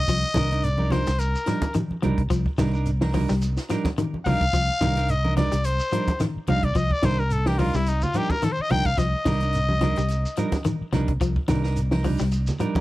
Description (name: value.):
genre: afrobeat.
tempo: 108 BPM.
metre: 4/4.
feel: swing 55% on 16ths.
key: C minor.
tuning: A4 = 440 Hz.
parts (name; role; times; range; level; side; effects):
growling trumpet; melody; 0.0-10.7 s; Eb4 to G5; -26 LUFS; left 2 dB; none.
fingered electric bass; bass; 0.0-12.5 s; C2; -24 LUFS; equal; none.
electric guitar at the edge of break-up; arpeggios; 0.1-12.8 s; Eb3 to G3; -28 LUFS; left 4 dB; none.
compact cocktail drum kit; drums; 0.1-12.8 s; hi-hat, kick drum, snare drum; -29 LUFS; equal; none.
congas; percussion; 0.1-12.8 s; none; -29 LUFS; right 1 dB; none.
shekere; percussion; 0.1-12.8 s; none; -33 LUFS; right 1 dB; none.
clean electric guitar; stabs; 0.4-12.8 s; G3 to Bb4; -30 LUFS; right 5 dB; tape echo.
room: small room ambience.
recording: dry, close 1970s-style studio recording.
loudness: -21 LUFS.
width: side -17 dB against mid.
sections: 0.0-12.8 A section.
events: trumpet solo 0.0-12.8.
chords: 0.0 Cm9.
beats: | 0.08 0.64 1.20 1.75 | 2.31 2.87 3.42 3.98 | 4.54 5.09 5.65 6.21 | 6.76 7.32 7.88 8.43 | 8.99 9.55 10.10 10.66 | 11.22 11.77 12.33.